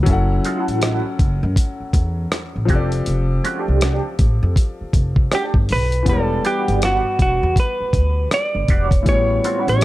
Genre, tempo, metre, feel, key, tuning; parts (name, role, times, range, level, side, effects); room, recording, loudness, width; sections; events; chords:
R&B, neo-soul; 80 BPM; 4/4; swing 61% on 16ths; E dorian; A4 = 444 Hz
clear baby grand piano; accompaniment; 0.0-9.8 s; A2 to F#5; -26 LUFS; left 4 dB
upright bass; bass; 0.1-9.8 s; E1 to F#2; -20 LUFS; equal
dusty soul sampler-style drum kit; drums; 0.1-9.8 s; hi-hat, kick drum, rim click; -18 LUFS; equal
electric guitar through a small old amp; second line; 0.5-9.8 s; G3 to G4; -24 LUFS; right 3 dB; wah, tremolo
clean electric guitar; melody; 5.3-9.8 s; F#4 to D5; -20 LUFS; right 1 dB
digital ambience; dark, warm production; -16 LUFS; side -16 dB against mid
0.0-9.8 A section
0.1 F#m7; 2.7 F69; 6.1 Em9; 9.1 A13